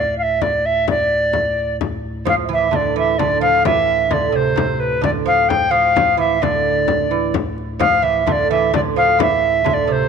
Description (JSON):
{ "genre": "medieval dance", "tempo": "87 BPM (dotted quarters)", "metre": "6/8", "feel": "straight", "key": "D minor", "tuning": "A4 = 440 Hz", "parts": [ { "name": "tenor recorder", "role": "melody", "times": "0.0-10.1 s", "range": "B4 to G5", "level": "-16 LUFS", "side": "equal", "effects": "none" }, { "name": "chamber organ, stopped flute", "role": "drone", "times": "0.0-10.1 s", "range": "D2 to A2", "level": "-28 LUFS", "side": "left 1 dB", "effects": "none" }, { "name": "frame drum", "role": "percussion", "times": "0.4-9.9 s", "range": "none", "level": "-23 LUFS", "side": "left 8 dB", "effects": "none" }, { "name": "lute", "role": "second line", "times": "2.3-10.1 s", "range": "C3 to F3", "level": "-20 LUFS", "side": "right 9 dB", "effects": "none" } ], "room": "moderate echo chamber reverb, RT60 2.0 s, studio reverb", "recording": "1960s-style stereo with parts hard left and right", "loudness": "-14 LUFS", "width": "side -6 dB against mid", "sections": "0.0-2.3 A section; 2.3-10.1 A section", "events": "none", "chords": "none" }